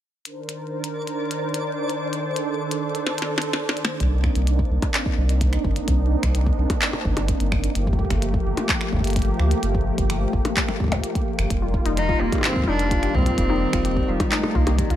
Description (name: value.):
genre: IDM.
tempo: 128 BPM.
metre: 4/4.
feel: straight.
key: C dorian.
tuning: A4 = 435 Hz.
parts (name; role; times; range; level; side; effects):
warm analog pad; sustained chords; 0.3-15.0 s; Eb3 to C5; -26 LUFS; equal; chorus, sidechain pumping.
glitchy drum kit; drums; 0.3-15.0 s; finger snaps, handclaps, hi-hat, percussion blips, snare drum; -26 LUFS; left 1 dB; ping-pong delay.
twinkling granular texture; texture; 0.8-4.0 s; D5; -35 LUFS; right 1 dB; built-in reverb.
round analog bass; bass; 4.0-15.0 s; F1 to D2; -22 LUFS; equal; tube saturation.
electronic kick drum; drums; 4.0-14.9 s; none; -25 LUFS; equal; none.
warbly dusty pluck; arpeggios; 11.6-14.9 s; Eb4 to G4; -28 LUFS; left 5 dB; chorus, ping-pong delay.
warm cello; melody; 12.0-15.0 s; Eb3 to Eb4; -24 LUFS; equal; tape echo.
room: light reverb.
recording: none.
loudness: -20 LUFS.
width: side -12 dB against mid.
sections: 0.3-4.0 A section; 4.0-15.0 B section.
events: drum fill 3.1-4.0.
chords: 0.3 Cm9; 7.8 Gm9; 11.5 F9sus4.